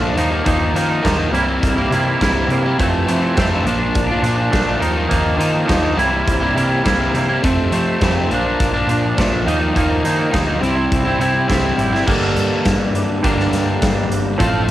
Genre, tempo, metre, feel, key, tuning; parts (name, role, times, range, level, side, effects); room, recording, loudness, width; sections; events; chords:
indie rock; 103 BPM; 4/4; straight; A4 = 441 Hz
crunchy overdriven guitar; riff; 0.0-14.7 s; Eb3 to A4; -20 LUFS; left 5 dB; cassette tape
twangy electric guitar; riff; 0.0-14.7 s; F2 to F4; -18 LUFS; right 3 dB; lush chorus, cassette tape
hollow-body short-scale fingered electric bass; bass; 0.0-14.7 s; G1 to F3; -22 LUFS; equal
big rock drum kit; drums; 0.2-14.7 s; crash cymbal, hi-hat, kick drum, snare drum; -21 LUFS; equal; cassette tape
light reverb; home recording on cassette; -14 LUFS; side -14 dB against mid
0.0-12.1 A section; 12.1-14.7 B section
0.2 Ebsus2; 1.3 C7; 2.8 Fmaj7; 3.7 Bbmaj7; 4.8 Ebsus2; 6.0 C7; 7.4 Fmaj7; 8.3 Bbmaj7; 9.5 Ebsus2; 10.6 C; 12.1 Gm